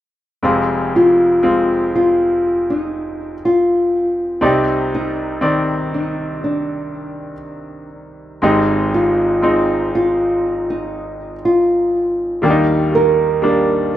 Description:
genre	pop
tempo	60 BPM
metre	4/4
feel	straight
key	unclear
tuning	A4 = 440 Hz
part	nylon-string guitar	melody	0.4-13.9 s	D4 to Bb4	-16 LUFS	equal	digital delay
part	bright grand piano	accompaniment	0.4-14.0 s	F1 to D5	-18 LUFS	equal	none
room	moderate plate reverb, RT60 2.4 s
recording	rough home demo mix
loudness	-14 LUFS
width	side -12 dB against mid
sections	0.4-14.0 A section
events	none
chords	0.4 Fm; 4.4 Cmadd9; 8.4 Ab; 12.4 Eb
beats	| 0.43 1.43 2.43 3.43 | 4.43 5.43 6.43 7.43 | 8.43 9.43 10.43 11.43 | 12.43 13.43

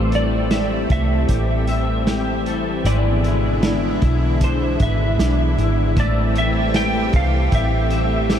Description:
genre	dream pop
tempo	77 BPM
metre	4/4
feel	straight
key	A minor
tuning	A4 = 440 Hz
part	clean lap steel guitar	melody	0.0-8.4 s	C5 to G5	-25 LUFS	right 1 dB	ensemble chorus, analog delay
part	lush unison pad	sustained chords	0.0-8.4 s	B2 to G4	-23 LUFS	equal	chorus
part	electric guitar at the edge of break-up	arpeggios	0.0-8.4 s	G#3 to E5	-26 LUFS	left 3 dB	ensemble chorus, analog delay
part	vintage muted fingered electric bass	bass	0.0-8.4 s	G#1 to C2	-20 LUFS	equal	none
part	vintage drum kit	drums	0.1-8.4 s	hi-hat, kick drum, snare drum	-22 LUFS	right 1 dB	none
part	vibraphone with hard mallets	texture	6.8-8.4 s	B4 to C5	-36 LUFS	right 1 dB	none
room	moderate huge ambient reverb, RT60 8.2 s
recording	dreamy mix soaked in reverb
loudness	-16 LUFS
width	side -9 dB against mid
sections	0.0-8.4 A section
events	none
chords	0.0 Am7; 2.8 E7/G#; 6.0 Am7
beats	0.51 1.29 2.07 | 2.85 3.62 4.41 5.18 | 5.96 6.74 7.52 8.30

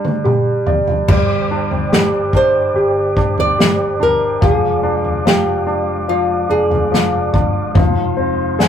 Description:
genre	pop ballad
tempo	72 BPM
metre	4/4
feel	straight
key	unclear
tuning	A4 = 445 Hz
part	clear concert grand piano	accompaniment	0.0-8.7 s	F3 to D5	-18 LUFS	equal	none
part	unplugged drum kit	drums	0.0-8.7 s	crash cymbal, kick drum, snare drum, toms	-16 LUFS	equal	none
part	percussive tonewheel organ	sustained chords	1.1-8.7 s	Ab3 to D6	-25 LUFS	equal	chorus vibrato, fast rotary speaker
part	fretless electric bass	bass	1.1-8.7 s	F1 to G1	-25 LUFS	left 1 dB	none
part	flamenco guitar	melody	2.4-7.3 s	F4 to D5	-17 LUFS	right 1 dB	none
room	wet booth ambience, RT60 0.2 s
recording	rough rehearsal-room recording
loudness	-13 LUFS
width	side -8 dB against mid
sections	0.0-1.1 A section; 1.1-8.7 B section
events	break 0.0-1.1; drum fill 0.0-1.1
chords	0.0 G5; 1.1 Gsus4; 4.4 Ddim/F; 7.8 Fm7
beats	0.25 | 1.09 1.92 2.75 3.59 | 4.42 5.25 6.09 6.92 | 7.75 8.59

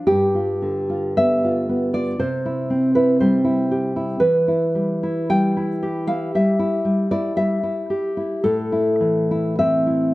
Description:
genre	romantic piece for solo classical guitar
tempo	50-60 BPM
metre	4/4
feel	rubato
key	unclear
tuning	A4 = 440 Hz
part	nylon-string guitar	solo	0.0-10.1 s	G2 to G5	-18 LUFS	equal	none
room	moderate recital hall reverb, RT60 1.7 s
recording	none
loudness	-18 LUFS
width	side -18 dB against mid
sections	0.0-10.1 A section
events	none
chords	0.1 G7; 2.2 C; 4.2 Em; 8.4 Am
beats	| 0.05 1.15 2.17 3.17 | 4.18 5.30 6.34 7.37 | 8.43 9.59

